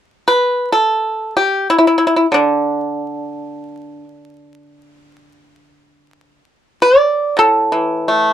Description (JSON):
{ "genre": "chinese traditional, Chinese solo plucked strings", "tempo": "free time", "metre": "none", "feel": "none", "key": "A shang mode", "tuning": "A4 = 439 Hz", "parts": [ { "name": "pipa", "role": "solo", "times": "0.3-8.3 s", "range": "A2 to D5", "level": "-13 LUFS", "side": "equal", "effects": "none" } ], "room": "light reverb", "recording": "dry, close 1970s-style studio recording, vinyl crackle", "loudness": "-12 LUFS", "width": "side -10 dB against mid", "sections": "0.0-8.3 A section", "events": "none", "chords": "none" }